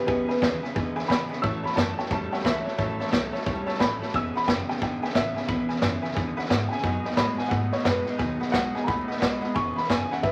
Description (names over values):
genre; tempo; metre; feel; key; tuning
rockabilly; 177 BPM; 4/4; swing 64% on 8ths; E major; A4 = 439 Hz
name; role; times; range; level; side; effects
dark upright piano; melody; 0.0-10.3 s; G4 to E6; -32 LUFS; equal; none
picked steel-string acoustic guitar; accompaniment; 0.0-10.3 s; A2 to A4; -38 LUFS; equal; none
tack piano; accompaniment; 0.0-10.3 s; B4 to B5; -37 LUFS; equal; none
electric guitar through a small old amp; riff; 0.0-10.3 s; E2 to A3; -34 LUFS; equal; none
upright bass; bass; 0.1-10.3 s; E1 to A2; -36 LUFS; equal; none
vintage drum kit; drums; 0.1-10.3 s; hi-hat, kick drum, snare drum; -30 LUFS; equal; none
room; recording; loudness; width
moderate studio reverb, RT60 0.7 s; vinyl crackle; -26 LUFS; mono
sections
0.0-10.3 A section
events
none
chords
0.0 E6; 1.4 A6; 4.1 E6; 6.8 B6; 9.6 E6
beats
| 0.08 0.42 0.76 1.09 | 1.43 1.77 2.11 2.45 | 2.78 3.12 3.46 3.80 | 4.14 4.47 4.81 5.15 | 5.49 5.83 6.17 6.51 | 6.84 7.18 7.52 7.86 | 8.20 8.54 8.88 9.22 | 9.56 9.89 10.23